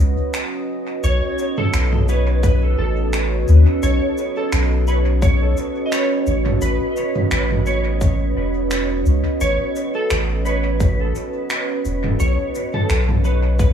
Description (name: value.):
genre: ambient dub.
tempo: 86 BPM.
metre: 4/4.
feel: swing 55% on 16ths.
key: B mixolydian.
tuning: A4 = 438 Hz.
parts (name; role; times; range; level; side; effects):
deep dark ambient pad; sustained chords; 0.0-13.7 s; C#4 to D#5; -23 LUFS; right 2 dB; chorus, built-in reverb.
soft dub sub bass; bass; 0.0-13.7 s; E1 to D#2; -17 LUFS; equal; none.
organic electronic drum kit; drums; 0.3-13.7 s; finger snaps, shaker, toms; -25 LUFS; right 1 dB; overdrive, dub echo.
clean lap steel guitar; melody; 1.0-13.7 s; A4 to D#5; -25 LUFS; equal; ensemble chorus, dub echo.
electronic kick drum; drums; 2.4-13.7 s; none; -19 LUFS; left 1 dB; overdrive.
room: light reverb.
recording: small room ambience.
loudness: -16 LUFS.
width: side -8 dB against mid.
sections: 0.0-1.0 A section; 1.0-13.7 B section.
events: break 0.0-1.0.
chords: 0.0 Aadd9 (rootless); 1.0 B9; 6.6 Aadd9; 12.2 B9.